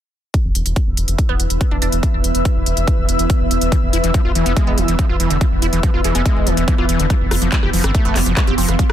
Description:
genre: psychedelic trance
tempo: 142 BPM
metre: 4/4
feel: straight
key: unclear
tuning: A4 = 444 Hz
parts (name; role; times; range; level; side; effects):
- evolving wavetable pad; sustained chords; 0.6-8.9 s; E3 to B3; -24 LUFS; right 4 dB; chorus, built-in reverb, sidechain pumping
- electronic kick drum; drums; 0.3-8.9 s; none; -17 LUFS; equal; none
- techno drum kit; drums; 0.3-8.9 s; handclaps, hi-hat, rim click; -23 LUFS; equal; overdrive
- ethereal airy pad; texture; 1.1-8.9 s; E4 to E6; -25 LUFS; left 2 dB; ensemble chorus, built-in reverb, sidechain pumping
- round analog bass; bass; 0.4-8.9 s; E1 to G1; -19 LUFS; equal; none
- resonant blip pluck; second line; 1.3-1.9, 4.7-8.6 s; E3 to D4; -29 LUFS; right 3 dB; phaser, sidechain pumping, high-pass filter, ping-pong delay
- screaming distorted acid line; riff; 3.7-8.8 s; D3 to G4; -22 LUFS; moving between left 8 dB and right 6 dB; distortion, chorus, auto-pan, sidechain pumping, ping-pong delay
room: digital ambience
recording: dense, heavily limited modern master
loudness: -14 LUFS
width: side -11 dB against mid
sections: 0.3-8.9 A section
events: none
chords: 0.3 E5; 7.1 F5

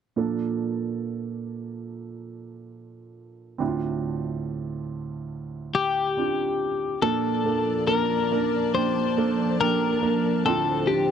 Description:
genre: pop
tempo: 70 BPM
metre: 4/4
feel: straight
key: Bb major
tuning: A4 = 440 Hz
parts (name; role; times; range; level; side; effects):
- warm baby grand piano; accompaniment; 0.2-11.1 s; D2 to Bb4; -27 LUFS; right 6 dB; none
- twelve-string electric guitar; melody; 5.7-11.1 s; G4 to C5; -24 LUFS; left 6 dB; tape echo
- rich studio string section; sustained chords; 7.0-11.1 s; F3 to A5; -30 LUFS; left 5 dB; none
room: small room ambience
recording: dry, close 1970s-style studio recording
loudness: -23 LUFS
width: side -8 dB against mid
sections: 0.2-7.0 A section; 7.0-11.1 B section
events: none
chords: 0.2 Bbmaj7; 3.6 Dm7; 7.0 Bbmaj7; 10.5 Dm7

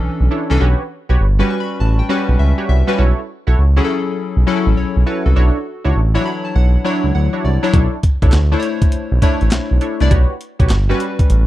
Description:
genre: R&B, new jack swing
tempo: 101 BPM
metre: 4/4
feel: swing 64% on 16ths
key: B minor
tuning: A4 = 440 Hz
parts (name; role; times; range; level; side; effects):
- warm analog keys; accompaniment; 0.0-11.5 s; E3 to C#6; -20 LUFS; left 3 dB; chorus
- smooth synth bass; bass; 0.0-11.5 s; G1 to D2; -13 LUFS; equal; none
- funky polysynth comp; stabs; 0.3-11.1 s; D4 to C#5; -23 LUFS; right 2 dB; chorus
- breakbeat sampler-style drum kit; drums; 7.7-11.5 s; handclaps, hi-hat, kick drum, snare drum; -14 LUFS; equal; none
room: little or no reverb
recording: dry, close 1970s-style studio recording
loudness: -13 LUFS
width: side -15 dB against mid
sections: 0.0-11.5 A section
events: synth keys fill 1.2-3.0, 6.0-7.7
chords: 0.0 Bm11; 0.6 A13; 3.0 F#m7/B; 5.4 Dmaj9; 7.7 Bm11; 10.1 A13

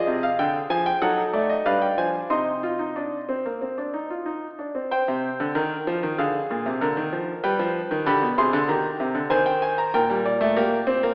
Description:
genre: classical, baroque-style 4-part fugue for grand piano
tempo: 95 BPM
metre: 4/4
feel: straight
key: C minor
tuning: A4 = 439 Hz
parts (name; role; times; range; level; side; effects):
- warm concert grand piano; solo; 0.0-11.1 s; Bb2 to C6; -24 LUFS; equal; none
room: wet scoring stage reverb, RT60 1.7 s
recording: heard from further back in the room, AM radio sound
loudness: -24 LUFS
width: mono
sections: 0.0-4.9 A section; 4.9-11.1 B section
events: none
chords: 0.0 Dm7b5; 1.0 F#m6; 1.7 G; 2.3 Cm; 6.2 Ddim; 7.4 G7; 8.7 Cm; 9.9 Gm/Bb

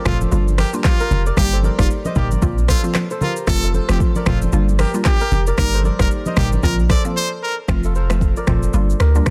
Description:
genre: afrobeats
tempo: 114 BPM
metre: 4/4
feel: swing 58% on 16ths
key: unclear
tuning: A4 = 440 Hz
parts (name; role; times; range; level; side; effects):
- hollow square pluck; accompaniment; 0.0-9.3 s; F3 to G4; -26 LUFS; equal; chorus
- kora; riff; 0.0-9.3 s; F4 to Eb5; -29 LUFS; equal; none
- brilliant trumpet; melody; 0.1-7.6 s; F4 to D5; -27 LUFS; equal; tape echo
- punchy sub bass; bass; 0.1-9.2 s; F1 to D2; -20 LUFS; equal; none
- afro-pop drum kit; drums; 0.1-9.3 s; finger snaps, handclaps, hi-hat, kick drum, rim click, shaker, toms; -22 LUFS; equal; soft clipping on snare
- congas; percussion; 0.1-7.0 s; none; -29 LUFS; equal; none
room: little or no reverb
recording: dense, heavily limited modern master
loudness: -17 LUFS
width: mono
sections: 0.0-7.7 A section; 7.7-9.3 B section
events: break 7.2-7.7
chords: 0.3 Gm7; 1.4 Eb; 2.4 Bbsus2; 3.5 F; 5.6 Eb; 6.6 Bbsus2; 7.7 F; 8.7 Gm7

